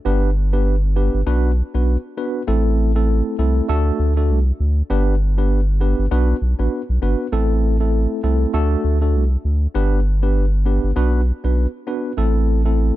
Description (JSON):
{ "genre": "afrobeats", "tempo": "99 BPM", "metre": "4/4", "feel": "swing 58% on 16ths", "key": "A dorian", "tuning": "A4 = 439 Hz", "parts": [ { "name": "tine electric piano", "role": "accompaniment", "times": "0.1-13.0 s", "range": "A3 to B4", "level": "-22 LUFS", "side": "equal", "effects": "medium stereo tremolo" }, { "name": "saturated sub bass", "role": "bass", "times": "0.1-12.9 s", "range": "G1 to D2", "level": "-17 LUFS", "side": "equal", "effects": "none" } ], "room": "digital ambience", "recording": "dark, warm production", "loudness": "-16 LUFS", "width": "side -15 dB against mid", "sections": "0.0-13.0 A section", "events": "none", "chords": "0.1 G; 1.3 Bm; 2.5 Am; 3.7 D; 4.9 G; 6.1 Bm; 7.3 Am; 8.5 D; 9.8 G; 11.0 Bm; 12.2 Am" }